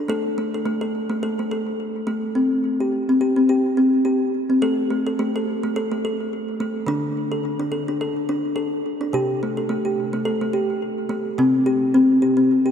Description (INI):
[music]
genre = world meditative, meditative tuned percussion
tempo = 106 BPM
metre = 4/4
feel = swing 55% on 16ths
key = unclear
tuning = A4 = 439 Hz
[part]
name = kalimba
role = solo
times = 0.0-12.7 s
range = C3 to A4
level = -19 LUFS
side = left 1 dB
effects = ping-pong delay
[sound]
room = wet cathedral reverb, RT60 6.5 s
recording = in a vast, echoing space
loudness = -19 LUFS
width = side -8 dB against mid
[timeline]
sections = 0.0-11.4 A section; 11.4-12.7 B section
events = none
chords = 0.1 N.C.; 2.4 C5; 4.6 N.C.; 6.9 D5; 9.1 C5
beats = | 0.10 0.66 1.23 1.79 | 2.35 2.92 3.48 4.05 | 4.62 5.18 5.74 6.31 | 6.87 7.44 8.00 8.57 | 9.13 9.70 10.26 10.82 | 11.39 11.95 12.51